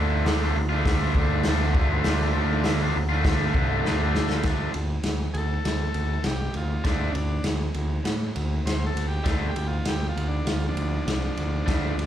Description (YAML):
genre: garage rock duo or trio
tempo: 100 BPM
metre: 4/4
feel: straight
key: D minor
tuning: A4 = 443 Hz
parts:
  - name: raw garage guitar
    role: riff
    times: 0.0-11.9 s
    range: D3 to F4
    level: -26 LUFS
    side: equal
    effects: overdrive, slapback echo
  - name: growling picked electric bass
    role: bass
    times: 0.0-12.1 s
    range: C2 to A2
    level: -26 LUFS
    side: equal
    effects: overdrive
  - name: raw garage drum kit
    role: drums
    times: 0.3-12.1 s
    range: hi-hat, kick drum, ride cymbal, snare drum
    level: -27 LUFS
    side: equal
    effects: none
  - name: overdriven combo organ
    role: melody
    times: 5.3-12.1 s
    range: F3 to C5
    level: -32 LUFS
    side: equal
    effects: spring reverb, plate reverb, slapback echo
room: light reverb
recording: live gig heard through the venue's PA, club reverb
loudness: -22 LUFS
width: side -10 dB against mid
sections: 0.0-4.4 A section; 4.4-12.1 B section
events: drum fill 3.8-4.4; transistor combo organ solo 4.4-12.1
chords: 0.0 Dm